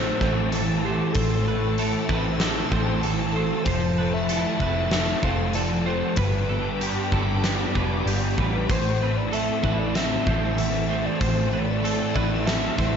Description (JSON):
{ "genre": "rock, shoegaze and dream pop", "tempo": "95 BPM", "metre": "4/4", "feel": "straight", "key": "A minor", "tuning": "A4 = 440 Hz", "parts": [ { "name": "reedy FM lead", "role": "melody", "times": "0.0-13.0 s", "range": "G4 to F5", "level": "-30 LUFS", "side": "equal", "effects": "chorus, slapback echo" }, { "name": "string machine, violins", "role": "sustained chords", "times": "0.0-13.0 s", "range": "G4 to E6", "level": "-35 LUFS", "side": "equal", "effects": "ensemble chorus" }, { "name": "direct-recorded clean electric guitar", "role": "arpeggios", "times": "0.0-13.0 s", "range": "G4 to C5", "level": "-33 LUFS", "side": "right 8 dB", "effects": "analog chorus, slapback echo" }, { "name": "overdriven semi-hollow guitar", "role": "riff", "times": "0.0-13.0 s", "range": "G2 to E4", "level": "-28 LUFS", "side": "right 9 dB", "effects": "reverse reverb" }, { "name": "thick fuzz guitar", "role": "riff", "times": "0.0-13.0 s", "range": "G2 to A4", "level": "-28 LUFS", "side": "left 9 dB", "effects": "distortion, ensemble chorus" }, { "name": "vintage muted fingered electric bass", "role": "bass", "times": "0.0-13.0 s", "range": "F1 to A1", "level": "-27 LUFS", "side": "equal", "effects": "none" }, { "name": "big rock drum kit", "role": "drums", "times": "0.2-12.9 s", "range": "hi-hat, kick drum, snare drum", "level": "-28 LUFS", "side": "equal", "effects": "none" } ], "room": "moderate scoring stage reverb, RT60 1.9 s, small room ambience", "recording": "nothing above 7.8 kHz", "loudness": "-21 LUFS", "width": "side -7 dB against mid", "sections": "0.0-13.0 A section", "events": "none", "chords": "0.0 Am; 3.7 Fmaj7; 6.2 G; 8.7 Am", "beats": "0.52 | 1.15 1.78 2.41 3.04 | 3.67 4.29 4.92 5.55 | 6.18 6.81 7.44 8.07 | 8.70 9.32 9.95 10.58 | 11.21 11.84 12.47" }